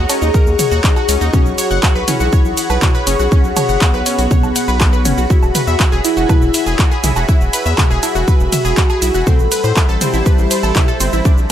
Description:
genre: melodic techno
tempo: 121 BPM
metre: 4/4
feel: straight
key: unclear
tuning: A4 = 439 Hz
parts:
  - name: soft octave-layered synth lead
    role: melody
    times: 0.0-10.9 s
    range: B3 to A4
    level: -21 LUFS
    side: left 1 dB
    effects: chorus, phaser, sidechain pumping, dub echo
  - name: lush unison pad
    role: sustained chords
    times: 0.0-11.5 s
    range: E4 to Db6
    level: -24 LUFS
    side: right 2 dB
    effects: chorus, phaser, sidechain pumping
  - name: analog pluck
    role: arpeggios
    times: 0.0-11.3 s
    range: C4 to F#6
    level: -21 LUFS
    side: equal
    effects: chorus, cassette tape, sidechain pumping, dub echo
  - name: round analog bass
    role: bass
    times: 0.0-11.5 s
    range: E1 to A2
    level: -18 LUFS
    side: equal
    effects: sidechain pumping
  - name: warbly tape-like pad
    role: texture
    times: 0.0-11.5 s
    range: G3 to Gb5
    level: -23 LUFS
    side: left 3 dB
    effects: chorus, built-in reverb, sidechain pumping
  - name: punchy analog drum machine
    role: drums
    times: 0.1-11.5 s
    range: handclaps, hi-hat, ride cymbal, shaker, toms, woodblock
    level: -19 LUFS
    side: right 1 dB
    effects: none
  - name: electronic kick drum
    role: drums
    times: 0.3-11.4 s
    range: none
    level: -13 LUFS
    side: equal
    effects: none
room: digital ambience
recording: none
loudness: -11 LUFS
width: side -10 dB against mid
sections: 0.0-11.5 A section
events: none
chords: 0.0 Ebm7; 1.3 Bsus2; 5.3 Eadd9; 9.3 Amadd9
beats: 0.34 0.84 | 1.33 1.83 2.33 2.82 | 3.32 3.81 4.31 4.81 | 5.30 5.80 6.29 6.79 | 7.29 7.78 8.28 8.77 | 9.27 9.77 10.26 10.76 | 11.25

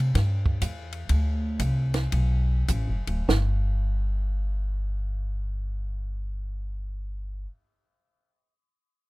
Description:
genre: jazz piano trio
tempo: 95-133 BPM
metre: 4/4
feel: swing 66% on 8ths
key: unclear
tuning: A4 = 440 Hz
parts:
  - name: upright bass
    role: bass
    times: 0.0-7.4 s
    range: D1 to C3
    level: -25 LUFS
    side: equal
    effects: none
  - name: compact cocktail drum kit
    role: drums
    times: 0.2-3.5 s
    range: hi-hat, kick drum, ride cymbal, snare drum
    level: -31 LUFS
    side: right 2 dB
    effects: none
room: little or no reverb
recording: close, detailed microphones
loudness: -25 LUFS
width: side -21 dB against mid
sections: 0.0-3.3 A section; 3.3-8.3 B section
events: slowing down 0.0-3.3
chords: none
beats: 0.15 0.62 | 1.09 1.60 2.12 2.69 | 3.29 3.92 4.55 5.18 | 5.81 6.44 7.07

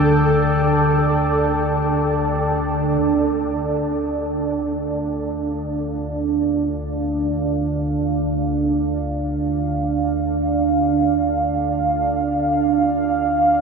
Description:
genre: dark ambient drone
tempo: free time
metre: none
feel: none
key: D minor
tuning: A4 = 440 Hz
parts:
  - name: deep dark ambient pad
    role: sustained chords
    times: 0.0-13.6 s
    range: D4 to G5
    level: -19 LUFS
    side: right 3 dB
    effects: chorus, built-in reverb
  - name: gamelan-type bronze metallophone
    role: arpeggios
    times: 0.0-3.2 s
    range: A4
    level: -29 LUFS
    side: left 2 dB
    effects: ping-pong delay
  - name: deep rumbling drone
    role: drone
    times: 0.0-13.6 s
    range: D2 to D3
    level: -24 LUFS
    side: left 2 dB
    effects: built-in reverb
  - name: flickering grainy texture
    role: texture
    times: 0.0-3.1 s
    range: A4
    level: -29 LUFS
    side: right 3 dB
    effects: built-in reverb
room: wet huge ambient reverb, RT60 8.0 s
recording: none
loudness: -18 LUFS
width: side -5 dB against mid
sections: 0.0-3.0 A section; 3.0-13.6 B section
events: filter sweep on synth drone 3.0-13.6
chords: 0.0 D5; 3.0 Dm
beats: free time

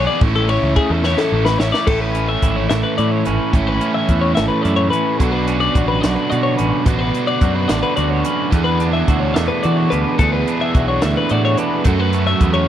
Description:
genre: math rock and midwest emo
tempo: 72 BPM (dotted quarters)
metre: 6/8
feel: straight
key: A major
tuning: A4 = 441 Hz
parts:
  - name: twelve-string electric guitar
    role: arpeggios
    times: 0.0-12.7 s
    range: G#4 to E5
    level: -20 LUFS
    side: left 6 dB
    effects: none
  - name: biting overdriven guitar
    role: riff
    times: 0.0-12.7 s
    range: A2 to G#4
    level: -20 LUFS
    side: right 2 dB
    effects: none
  - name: growling picked electric bass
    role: bass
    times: 0.0-12.6 s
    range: G#1 to E3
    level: -19 LUFS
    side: equal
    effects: overdrive
  - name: compact cocktail drum kit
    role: drums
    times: 0.2-12.5 s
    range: crash cymbal, hi-hat, kick drum, ride cymbal, snare drum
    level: -18 LUFS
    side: equal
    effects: none
  - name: twangy electric guitar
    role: accompaniment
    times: 1.9-12.7 s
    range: E2 to F#4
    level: -23 LUFS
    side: right 8 dB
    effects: none
room: little or no reverb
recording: dry, close 1970s-style studio recording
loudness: -14 LUFS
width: side -10 dB against mid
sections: 0.0-1.9 A section; 1.9-12.7 B section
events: drum fill 1.0-1.9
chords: 0.2 A; 1.9 Amaj9; 5.2 Bm9; 8.5 E9sus4; 11.9 F#m7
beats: | 0.21 1.04 | 1.88 2.71 | 3.54 4.37 | 5.20 6.03 | 6.86 7.70 | 8.53 9.36 | 10.19 11.02 | 11.85

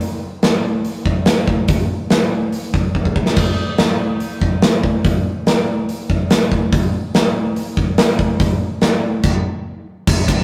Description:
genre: rock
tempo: 143 BPM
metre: 4/4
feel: straight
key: none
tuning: none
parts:
  - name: big rock drum kit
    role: drums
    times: 0.0-10.4 s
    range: crash cymbal, hi-hat, kick drum, ride cymbal, snare drum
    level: -17 LUFS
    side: equal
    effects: none
room: light reverb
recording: rough rehearsal-room recording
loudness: -17 LUFS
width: mono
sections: 0.0-10.1 A section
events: drum fill 3.0-3.4; stop 9.2-10.1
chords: none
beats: | 0.02 0.44 0.86 1.28 | 1.70 2.11 2.53 2.95 | 3.37 3.79 4.21 4.63 | 5.05 5.47 5.89 6.31 | 6.72 7.14 7.56 7.98 | 8.40 8.82 9.24 9.66 | 10.07

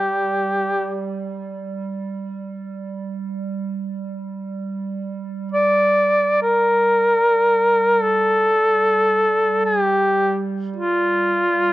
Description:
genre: caucasian folk, Caucasian lament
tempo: free time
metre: none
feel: none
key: G minor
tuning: A4 = 439 Hz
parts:
  - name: clear duduk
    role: melody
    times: 0.0-11.7 s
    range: F4 to D5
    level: -16 LUFS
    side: equal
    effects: cassette tape
  - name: warbly tape-like pad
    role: drone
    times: 0.0-11.7 s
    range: G3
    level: -28 LUFS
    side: right 5 dB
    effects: chorus, built-in reverb, cassette tape
room: light reverb, small room ambience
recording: home recording on cassette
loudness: -17 LUFS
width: side -16 dB against mid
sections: 0.0-4.6 A section; 4.6-11.7 A section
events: none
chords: none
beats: free time

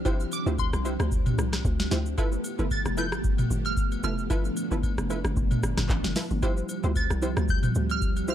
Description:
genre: amapiano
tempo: 113 BPM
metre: 4/4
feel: swing 55% on 16ths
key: D dorian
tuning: A4 = 435 Hz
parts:
  - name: glassy wavetable pluck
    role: melody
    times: 0.0-8.3 s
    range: C6 to A6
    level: -33 LUFS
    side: right 2 dB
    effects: chorus, digital delay
  - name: string machine, cellos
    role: sustained chords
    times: 0.0-8.3 s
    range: F3 to G4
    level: -32 LUFS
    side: equal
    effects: ensemble chorus, sidechain pumping
  - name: hollow log drum bass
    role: bass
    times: 0.0-8.3 s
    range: F1 to D2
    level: -29 LUFS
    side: equal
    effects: none
  - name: punchy chord stab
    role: stabs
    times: 0.1-8.3 s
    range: E4 to C5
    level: -33 LUFS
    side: right 2 dB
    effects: chorus, digital delay
  - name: booming analog drum machine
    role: drums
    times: 0.1-8.3 s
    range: handclaps, hi-hat, kick drum, rim click, shaker, snare drum, toms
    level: -27 LUFS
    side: equal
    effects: none
  - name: agogo bells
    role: percussion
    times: 0.1-8.3 s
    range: none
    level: -44 LUFS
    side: left 7 dB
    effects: none
room: digital ambience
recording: dark, warm production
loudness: -24 LUFS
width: side -11 dB against mid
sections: 0.0-8.3 A section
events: none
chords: 0.0 Dm11; 2.2 G13; 6.4 Dm11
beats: | 0.05 0.58 1.12 1.65 | 2.18 2.71 3.24 3.77 | 4.30 4.83 5.36 5.89 | 6.43 6.96 7.49 8.02

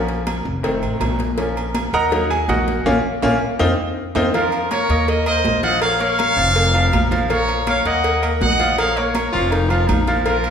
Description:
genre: latin, salsa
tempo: 162 BPM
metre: 4/4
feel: straight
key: Bb harmonic minor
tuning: A4 = 440 Hz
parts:
  - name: bright grand piano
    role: accompaniment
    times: 0.0-10.5 s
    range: Eb3 to Bb5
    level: -21 LUFS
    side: equal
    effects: none
  - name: upright bass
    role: bass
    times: 0.0-10.5 s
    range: F1 to F2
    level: -22 LUFS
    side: equal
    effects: none
  - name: congas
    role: percussion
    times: 0.1-10.5 s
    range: none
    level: -28 LUFS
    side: left 2 dB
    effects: none
  - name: cowbell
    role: percussion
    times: 0.1-10.4 s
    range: none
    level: -26 LUFS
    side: left 1 dB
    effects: none
  - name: timbales and agogo bells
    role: percussion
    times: 0.3-10.5 s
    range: none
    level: -27 LUFS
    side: right 4 dB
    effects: none
  - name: bright trumpet section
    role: melody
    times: 4.4-10.5 s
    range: F4 to Gb5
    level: -19 LUFS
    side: equal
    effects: none
  - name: warm baritone saxophone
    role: second line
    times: 9.3-10.2 s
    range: Eb4 to F4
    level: -23 LUFS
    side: left 2 dB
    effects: none
room: wet recital hall reverb, RT60 1.5 s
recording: recorded in a church or concert hall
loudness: -16 LUFS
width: side -7 dB against mid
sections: 0.0-4.3 A section; 4.3-10.5 B section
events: grand piano solo 0.0-4.3; drum fill 2.9-4.3; band accent 2.9-4.3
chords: 0.0 Bbm; 0.6 F7; 1.4 Bbm; 2.1 Ebm; 2.9 Bbm; 3.6 F5; 4.3 Bbm; 5.1 Eb5; 5.8 Bbm; 6.6 Fsus4; 7.3 Bbm; 8.0 Ebm; 8.8 Bbm; 9.5 F7sus4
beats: 0.27 0.64 1.01 | 1.38 1.75 2.12 2.49 | 2.86 3.23 3.60 3.97 | 4.34 4.71 5.08 5.45 | 5.82 6.19 6.56 6.93 | 7.30 7.67 8.04 8.41 | 8.78 9.15 9.52 9.89 | 10.26

